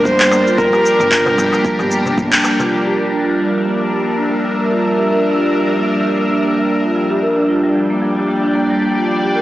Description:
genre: organic downtempo.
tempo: 113 BPM.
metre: 4/4.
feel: swing 56% on 16ths.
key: G dorian.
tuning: A4 = 440 Hz.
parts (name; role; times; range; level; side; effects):
rich kamancheh; melody; 0.0-2.2 s; Bb4 to C5; -16 LUFS; equal; tape echo.
bowed-like drone; sustained chords; 0.0-9.4 s; G3 to D5; -18 LUFS; equal; built-in reverb, phaser, sidechain pumping.
marimba with medium mallets; arpeggios; 0.0-9.4 s; F3 to Bb4; -17 LUFS; equal; low-pass filter, tape echo.
upright bass; bass; 0.1-2.3 s; G1; -24 LUFS; equal; sidechain pumping.
electronic kick drum; drums; 0.1-2.3 s; none; -23 LUFS; equal; none.
electronic shaker and handclaps; drums; 0.1-2.7 s; none; -18 LUFS; equal; none.
darbuka; percussion; 0.2-2.7 s; none; -26 LUFS; left 1 dB; none.
wind-like tuned noise texture; texture; 3.5-9.4 s; E5 to G5; -24 LUFS; equal; built-in reverb.
room: wet concert hall reverb, RT60 2.2 s.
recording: blown-out, overdriven recording, overdrive, small speaker sound.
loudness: -13 LUFS.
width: side -15 dB against mid.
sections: 0.0-2.7 A section; 2.7-9.4 B section.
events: band accent 2.3; filter sweep on marimba 2.7-9.4.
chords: 0.0 Gm7.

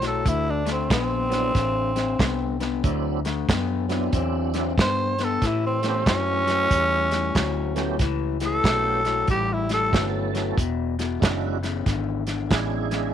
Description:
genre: electric blues shuffle.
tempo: 93 BPM.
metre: 4/4.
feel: swing 63% on 8ths.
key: unclear.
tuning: A4 = 439 Hz.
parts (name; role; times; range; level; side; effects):
growling tenor saxophone; melody; 0.0-10.1 s; C4 to C5; -24 LUFS; right 1 dB; none.
electric guitar through a small old amp; riff; 0.0-13.1 s; E2 to C4; -28 LUFS; left 11 dB; none.
vintage muted fingered electric bass; bass; 0.0-13.1 s; E1 to A2; -28 LUFS; right 1 dB; none.
warm soul drum kit; drums; 0.0-13.0 s; hi-hat, kick drum, snare drum; -25 LUFS; right 1 dB; none.
tonewheel organ; accompaniment; 1.3-13.1 s; F#3 to A4; -30 LUFS; right 15 dB; slow rotary speaker, overdrive, chorus vibrato.
room: light reverb, small room ambience.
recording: 1960s-style stereo with parts hard left and right.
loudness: -21 LUFS.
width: side -9 dB against mid.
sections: 0.0-13.1 A section.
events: none.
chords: 0.3 D9; 5.4 A9; 10.6 E9.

